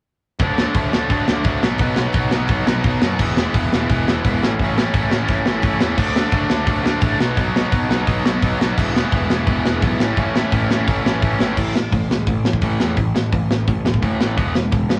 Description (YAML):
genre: punk rock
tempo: 172 BPM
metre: 4/4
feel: straight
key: A major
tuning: A4 = 441 Hz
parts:
  - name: cranked stack guitar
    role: riff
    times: 0.4-15.0 s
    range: A2 to E4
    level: -24 LUFS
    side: equal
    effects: overdrive
  - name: distorted electric guitar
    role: riff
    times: 0.4-11.6 s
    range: E2 to D4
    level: -27 LUFS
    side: equal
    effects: distortion
  - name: fuzz picked electric bass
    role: bass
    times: 0.4-15.0 s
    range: E1 to F#2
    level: -27 LUFS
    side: equal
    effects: overdrive
  - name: tight metal drum kit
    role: drums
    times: 0.4-15.0 s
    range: crash cymbal, hi-hat, kick drum, snare drum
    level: -21 LUFS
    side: equal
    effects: none
room: moderate small room reverb, RT60 0.5 s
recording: rough rehearsal-room recording, cassette tape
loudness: -18 LUFS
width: mono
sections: 0.4-11.6 A section; 11.6-15.0 B section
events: none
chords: 0.4 D; 1.6 B; 3.2 E; 4.4 A; 6.0 D; 7.2 B; 8.8 E; 10.0 A; 11.6 A5; 14.4 E